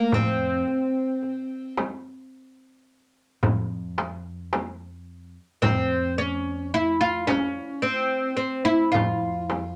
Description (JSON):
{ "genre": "Arabic maqam ensemble", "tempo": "109 BPM (eighths)", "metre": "10/8", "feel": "straight", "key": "F maqam suznak", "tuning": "A4 = 440 Hz", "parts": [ { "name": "oud", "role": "melody", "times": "0.0-9.8 s", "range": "Bb3 to F4", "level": "-26 LUFS", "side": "equal", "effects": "none" }, { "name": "upright bass", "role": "bass", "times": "0.1-9.8 s", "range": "F2", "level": "-36 LUFS", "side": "equal", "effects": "none" }, { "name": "darbuka", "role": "percussion", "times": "0.1-9.8 s", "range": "none", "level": "-30 LUFS", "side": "equal", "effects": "none" }, { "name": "frame drum", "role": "percussion", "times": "0.1-9.8 s", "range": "none", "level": "-32 LUFS", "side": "equal", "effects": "none" } ], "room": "moderate studio reverb, RT60 0.5 s", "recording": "none", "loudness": "-25 LUFS", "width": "mono", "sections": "0.0-9.8 A section", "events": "none", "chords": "none" }